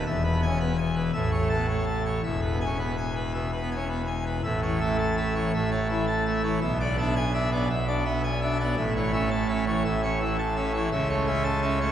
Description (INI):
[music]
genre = classical, organ toccata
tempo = 111 BPM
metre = 4/4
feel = straight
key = A major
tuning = A4 = 439 Hz
[part]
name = pipe organ, full organ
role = solo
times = 0.0-11.9 s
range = E1 to A5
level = -24 LUFS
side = equal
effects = none
[sound]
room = wet church reverb, RT60 3.1 s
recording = heard from further back in the room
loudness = -24 LUFS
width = side -10 dB against mid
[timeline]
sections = 0.0-4.4 A section; 4.4-11.9 B section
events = none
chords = 0.1 E; 1.1 A; 2.2 E; 4.4 A; 6.6 E7/B; 8.8 A; 10.9 A/C#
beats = | 0.06 0.60 1.14 1.68 | 2.23 2.79 3.34 3.89 | 4.44 4.99 5.53 6.07 | 6.62 7.16 7.69 8.23 | 8.77 9.31 9.84 10.38 | 10.92 11.45